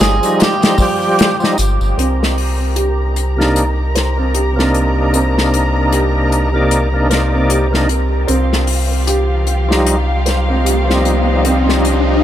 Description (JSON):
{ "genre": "trip hop", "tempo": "76 BPM", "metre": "4/4", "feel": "swing 57% on 16ths", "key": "C minor", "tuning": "A4 = 440 Hz", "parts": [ { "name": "electric guitar at the edge of break-up", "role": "melody", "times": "0.0-1.5 s", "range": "G4 to Ab4", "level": "-21 LUFS", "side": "right 3 dB", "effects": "dub echo" }, { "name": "overdriven tonewheel organ", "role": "accompaniment", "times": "0.0-12.2 s", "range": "C3 to D5", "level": "-18 LUFS", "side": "equal", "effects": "chorus vibrato, tremolo, low-pass filter, tape echo" }, { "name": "soft dub sub bass", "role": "bass", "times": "0.0-12.2 s", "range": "G1 to C2", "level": "-16 LUFS", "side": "equal", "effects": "tube saturation" }, { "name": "unplugged drum kit", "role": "drums", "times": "0.0-12.1 s", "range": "hi-hat, kick drum, snare drum", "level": "-18 LUFS", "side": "left 2 dB", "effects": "high-pass filter on kick, high-pass filter on hats, high-pass filter on snare, high-pass filter on room" }, { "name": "tambourine", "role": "percussion", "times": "0.2-1.9 s", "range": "none", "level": "-30 LUFS", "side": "right 3 dB", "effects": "none" }, { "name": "warm symphonic violin section", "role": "sustained chords", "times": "2.0-12.2 s", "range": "F4 to Bb5", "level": "-23 LUFS", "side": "equal", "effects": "none" }, { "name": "felt-muted upright piano", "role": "arpeggios", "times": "2.0-12.2 s", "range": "C4 to C5", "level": "-20 LUFS", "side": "right 2 dB", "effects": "low-pass filter, dub echo" }, { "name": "riser", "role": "sound effects", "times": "9.4-12.2 s", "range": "none", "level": "-21 LUFS", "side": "left 2 dB", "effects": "none" } ], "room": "light reverb, studio reverb", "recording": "echo-heavy mix", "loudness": "-12 LUFS", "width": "side -11 dB against mid", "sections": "0.0-2.0 A section; 2.0-12.2 B section", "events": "filter sweep on felt piano 2.0-12.2; riser 9.4-12.2", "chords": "0.0 Ebadd9; 2.0 Cm9; 8.3 Ebadd9/C" }